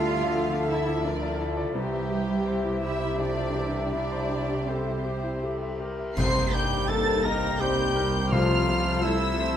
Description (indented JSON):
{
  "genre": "cinematic, emotional film score for orchestra",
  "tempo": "84 BPM",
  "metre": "3/4",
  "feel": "rubato",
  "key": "unclear",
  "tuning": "A4 = 440 Hz",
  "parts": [
    { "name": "dark studio violin section", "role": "melody", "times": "0.0-9.6 s", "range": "G4 to C7", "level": "-34 LUFS", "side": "equal", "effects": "none" },
    { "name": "mellow clarinet", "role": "second line", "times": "0.0-9.6 s", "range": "E4 to C5", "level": "-34 LUFS", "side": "left 2 dB", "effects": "none" },
    { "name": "silver concert flute", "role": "second line", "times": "0.0-9.6 s", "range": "E5 to C6", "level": "-35 LUFS", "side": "left 3 dB", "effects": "none" },
    { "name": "warm studio violin section", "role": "second line", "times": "0.0-9.6 s", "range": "G4 to F5", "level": "-36 LUFS", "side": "left 2 dB", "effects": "none" },
    { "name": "bright concert grand piano", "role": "accompaniment", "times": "0.0-9.6 s", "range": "C2 to E5", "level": "-32 LUFS", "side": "left 2 dB", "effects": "none" },
    { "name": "dark symphonic viola section", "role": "accompaniment", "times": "0.0-9.6 s", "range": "E3 to A4", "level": "-35 LUFS", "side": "right 1 dB", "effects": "none" },
    { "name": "dark French horn section", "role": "sustained chords", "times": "0.0-9.6 s", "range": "D3 to A4", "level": "-33 LUFS", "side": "left 4 dB", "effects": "none" },
    { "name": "dark studio double bass section", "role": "bass", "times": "0.0-9.6 s", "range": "C2 to D2", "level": "-33 LUFS", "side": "right 2 dB", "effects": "none" },
    { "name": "dark symphonic cello section", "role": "bass", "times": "0.0-9.6 s", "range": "C2 to F4", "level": "-32 LUFS", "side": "right 3 dB", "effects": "none" },
    { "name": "cymbal swell, clash cymbals and concert bass drum", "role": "percussion", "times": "1.8-7.6 s", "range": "none", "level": "-35 LUFS", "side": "equal", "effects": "none" },
    { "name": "mellow cor anglais", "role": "second line", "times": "6.2-9.6 s", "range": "E4 to C5", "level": "-33 LUFS", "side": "right 3 dB", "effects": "none" },
    { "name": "timpani", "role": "percussion", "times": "6.2-9.3 s", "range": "C3", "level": "-31 LUFS", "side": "left 1 dB", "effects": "none" }
  ],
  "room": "moderate recital hall reverb, RT60 1.4 s",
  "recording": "none",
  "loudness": "-24 LUFS",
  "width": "side -9 dB against mid",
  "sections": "0.0-6.2 A section; 6.2-9.6 B section",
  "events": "band accent 6.2-6.9",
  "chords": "0.0 Dmadd9; 1.8 C; 6.2 Cm7; 8.3 F/C",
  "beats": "0.35 1.05 | 1.75 2.47 3.18 | 3.92 4.68 5.43 | 6.17 6.89 7.61 | 8.32 9.04"
}